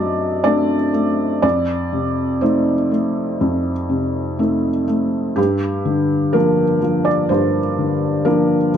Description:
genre	neoclassical minimalist piano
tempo	62 BPM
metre	4/4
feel	rubato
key	G minor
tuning	A4 = 443 Hz
part	felt-muted upright piano	solo	0.0-8.8 s	F2 to Eb5	-16 LUFS	equal	none
room	moderate stone room reverb, RT60 1.3 s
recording	dark, warm production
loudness	-16 LUFS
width	side -8 dB against mid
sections	0.0-8.8 A section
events	none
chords	0.0 D7/F#; 1.4 F7; 5.4 Gm7

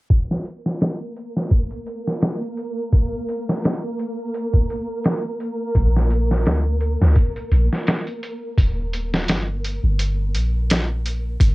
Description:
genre	trip hop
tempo	85 BPM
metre	4/4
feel	swing 55% on 16ths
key	unclear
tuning	A4 = 438 Hz
part	trip hop sampler-style drum kit	drums	0.1-11.5 s	hi-hat, kick drum, snare drum	-19 LUFS	equal	low-pass filter on hats, vintage 12-bit sampler grit, small room ambience, cassette tape, low-pass filter on kick, low-pass filter on snare
part	flickering grainy texture	texture	0.7-11.4 s	Bb3 to Bb4	-29 LUFS	right 1 dB	built-in reverb, cassette tape
part	soft 808-style bass	bass	5.8-11.5 s	Eb1 to D2	-19 LUFS	equal	none
room	light reverb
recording	home recording on cassette, low-pass filter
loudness	-19 LUFS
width	side -21 dB against mid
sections	0.1-11.4 A section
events	filter sweep 0.1-11.4; kick drops out 10.0-11.4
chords	0.1 N.C.; 5.8 Bb; 8.6 Eb

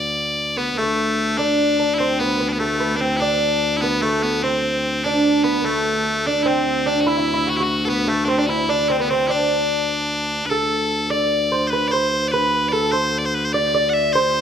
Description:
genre	medieval dance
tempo	99 BPM (dotted quarters)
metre	6/8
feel	straight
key	unclear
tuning	A4 = 439 Hz
part	loud bright bagpipes	melody	0.0-14.4 s	A3 to F#5	-21 LUFS	left 1 dB	none
part	clear viola da gamba	drone	0.0-14.4 s	D2	-26 LUFS	left 1 dB	none
part	lute	second line	0.6-14.4 s	A3 to D5	-20 LUFS	right 1 dB	none
room	wet recital hall reverb, RT60 1.6 s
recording	none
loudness	-17 LUFS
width	side -8 dB against mid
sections	0.8-10.5 A section; 10.5-14.4 B section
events	none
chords	none

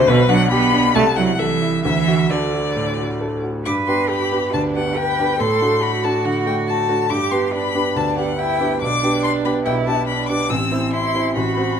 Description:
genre	quick classical-period movement for piano trio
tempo	140 BPM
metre	4/4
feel	rubato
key	G major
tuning	A4 = 440 Hz
part	rich violin	melody	0.0-11.8 s	B4 to E6	-21 LUFS	left 7 dB	none
part	rich cello	second line	0.0-11.8 s	B2 to B4	-21 LUFS	right 6 dB	none
part	warm grand piano	accompaniment	0.0-11.8 s	A1 to A4	-20 LUFS	equal	none
room	moderate recital hall reverb, RT60 1.4 s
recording	close, detailed microphones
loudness	-16 LUFS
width	side -7 dB against mid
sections	0.0-3.7 A section; 3.7-11.8 B section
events	none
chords	0.1 G/B; 1.0 Am/C; 1.8 D; 3.7 G; 5.4 D7/A; 7.1 G; 8.8 G/B; 10.5 Am

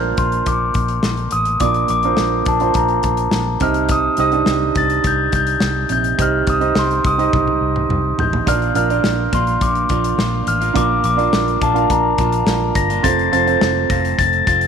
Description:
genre	piano-driven pop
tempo	105 BPM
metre	4/4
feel	straight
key	Bb major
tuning	A4 = 442 Hz
part	glockenspiel with rubber mallets	melody	0.0-14.7 s	A5 to Bb6	-18 LUFS	left 4 dB	none
part	warm concert grand piano	accompaniment	0.0-14.7 s	Bb2 to F5	-21 LUFS	right 10 dB	none
part	vintage muted fingered electric bass	bass	0.0-14.7 s	F1 to C2	-22 LUFS	left 1 dB	none
part	modern studio drum kit	drums	0.2-14.7 s	hi-hat, kick drum, snare drum, toms	-22 LUFS	left 1 dB	none
part	direct-recorded clean electric guitar	riff	8.5-14.7 s	F2 to F4	-25 LUFS	right 12 dB	none
room	moderate echo chamber reverb, RT60 2.0 s, small room ambience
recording	1960s-style stereo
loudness	-14 LUFS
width	side -7 dB against mid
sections	0.0-14.7 A section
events	drum fill 7.3-8.5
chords	0.0 Bb; 3.6 Cm; 8.5 Bb; 13.0 F

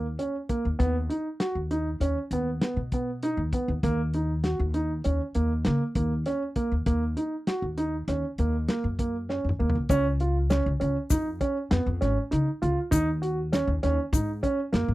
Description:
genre	progressive instrumental, band music in an uneven meter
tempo	99 BPM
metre	5/4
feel	straight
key	Eb minor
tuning	A4 = 441 Hz
part	dark concert grand piano	arpeggios	0.0-14.9 s	Bb3 to F#4	-28 LUFS	right 2 dB	none
part	upright bass	bass	0.0-14.9 s	Ab1 to Db3	-27 LUFS	left 1 dB	none
part	warm soul drum kit	drums	0.2-14.9 s	hi-hat, kick drum, snare drum, toms	-29 LUFS	left 1 dB	none
part	tube shaker	percussion	9.9-14.4 s	none	-38 LUFS	left 14 dB	none
room	little or no reverb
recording	dry, close 1970s-style studio recording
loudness	-24 LUFS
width	side -17 dB against mid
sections	0.0-9.9 A section; 9.9-14.9 B section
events	drum fill 9.3-9.9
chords	0.0 Eb7(no3); 0.8 B/D#; 3.8 Ebm7; 9.9 Db; 12.9 Ebm7

